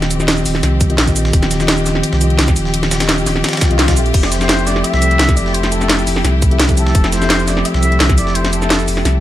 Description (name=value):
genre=liquid drum and bass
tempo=171 BPM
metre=4/4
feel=straight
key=unclear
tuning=A4 = 440 Hz
part: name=mellow tine electric piano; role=accompaniment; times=0.0-9.2 s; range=Eb3 to E5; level=-19 LUFS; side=equal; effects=medium stereo tremolo, vintage 12-bit sampler grit, tape echo
part: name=clear symphonic string section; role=sustained chords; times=0.0-9.2 s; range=F3 to G4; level=-24 LUFS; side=left 2 dB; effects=none
part: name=warm sub bass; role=bass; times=0.0-9.2 s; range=Eb1 to C2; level=-17 LUFS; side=equal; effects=none
part: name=drum and bass drum kit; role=drums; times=0.0-9.1 s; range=crash cymbal, hi-hat, shaker, snare drum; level=-18 LUFS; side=equal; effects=none
part: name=dusty soul sampler-style drum kit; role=drums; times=0.0-9.1 s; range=hi-hat, snare drum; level=-23 LUFS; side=left 1 dB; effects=high-pass filter on hats, high-pass filter on snare
part: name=electronic kick drum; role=drums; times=0.8-8.2 s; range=none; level=-14 LUFS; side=equal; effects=none
part: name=swell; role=sound effects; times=3.6-4.1 s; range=none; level=-24 LUFS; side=left 5 dB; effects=none
part: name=trumpet with plunger mute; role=melody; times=4.2-8.9 s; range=A4 to E5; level=-21 LUFS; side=left 1 dB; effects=tape echo
room=light reverb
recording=none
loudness=-12 LUFS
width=side -13 dB against mid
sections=0.0-9.2 A section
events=swell 3.6-4.1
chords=0.0 Eb69; 4.1 Fmaj9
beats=0.28 0.63 0.98 | 1.33 1.69 2.04 2.39 | 2.74 3.09 3.44 3.79 | 4.14 4.49 4.84 5.19 | 5.54 5.90 6.25 6.60 | 6.95 7.30 7.65 8.00 | 8.35 8.70 9.05